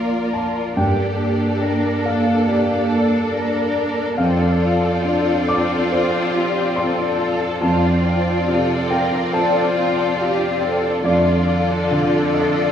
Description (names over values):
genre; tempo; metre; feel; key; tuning
cinematic, emotional film score for orchestra; 70 BPM; 4/4; rubato; unclear; A4 = 440 Hz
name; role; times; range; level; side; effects
warm studio violin section; second line; 0.0-12.7 s; A3 to D5; -22 LUFS; left 4 dB; none
rich studio viola section; accompaniment; 0.0-12.7 s; D3 to F4; -22 LUFS; equal; none
warm baby grand piano; accompaniment; 0.0-12.7 s; Bb1 to D6; -20 LUFS; right 1 dB; none
warm studio cello section; bass; 0.0-12.7 s; F4 to Bb4; -26 LUFS; right 2 dB; none
room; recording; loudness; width
wet recital hall reverb, RT60 1.4 s; heard from further back in the room; -16 LUFS; side -9 dB against mid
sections
0.0-12.7 A section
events
none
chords
0.0 Bb; 0.8 Gmadd9; 4.2 F6; 11.0 Dm/F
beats
| 0.78 1.63 2.49 3.33 | 4.18 5.05 5.92 6.77 | 7.62 8.48 9.34 10.19 | 11.05 11.91